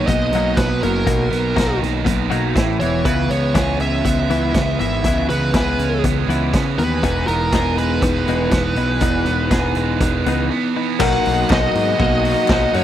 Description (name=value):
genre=indie rock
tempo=121 BPM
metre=4/4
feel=straight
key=B major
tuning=A4 = 439 Hz
part: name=bluesy overdriven lead guitar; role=melody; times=0.0-12.8 s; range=A#4 to F#5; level=-22 LUFS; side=equal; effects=distortion, tape echo
part: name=biting overdriven guitar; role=riff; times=0.0-12.8 s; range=E2 to A#4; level=-23 LUFS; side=right 10 dB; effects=lush chorus
part: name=twelve-string electric guitar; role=riff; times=0.0-12.8 s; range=E3 to G#4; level=-23 LUFS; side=left 7 dB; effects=spring reverb
part: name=fuzz picked electric bass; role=bass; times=0.0-12.8 s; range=E1 to C#3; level=-21 LUFS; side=equal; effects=overdrive
part: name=raw garage drum kit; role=drums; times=0.1-12.8 s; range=crash cymbal, hi-hat, kick drum, snare drum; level=-21 LUFS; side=equal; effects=none
part: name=bell-like tine electric piano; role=second line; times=11.0-12.8 s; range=A#4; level=-26 LUFS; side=left 12 dB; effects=analog chorus
part: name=mellow tonewheel organ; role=sustained chords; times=11.0-12.8 s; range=F#4 to D#6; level=-29 LUFS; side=left 2 dB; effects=slow rotary speaker, chorus vibrato
part: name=group handclap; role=percussion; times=11.5-12.6 s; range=none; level=-32 LUFS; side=left 12 dB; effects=none
room=little or no reverb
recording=dry, close 1970s-style studio recording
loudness=-15 LUFS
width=side -11 dB against mid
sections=0.0-11.0 A section; 11.0-12.8 B section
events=none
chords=0.0 Bmaj7; 2.6 A5; 2.8 E5; 3.1 C#m7; 7.0 Emaj7; 11.0 Bmaj7